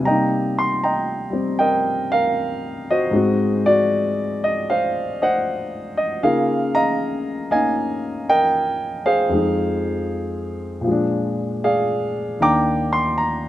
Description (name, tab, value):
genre	solo jazz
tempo	78 BPM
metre	4/4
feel	swing 68% on 8ths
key	C minor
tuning	A4 = 440 Hz
part	dark concert grand piano	solo	0.0-13.5 s	Eb2 to D6	-18 LUFS	equal	slapback echo
room	little or no reverb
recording	recorded outdoors, with no room sound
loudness	-18 LUFS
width	side -13 dB against mid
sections	0.0-13.5 A section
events	none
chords	0.0 Cm7; 3.1 Ab7; 6.2 Db69; 9.3 Fm7; 10.9 Bb7; 12.4 Ebmaj7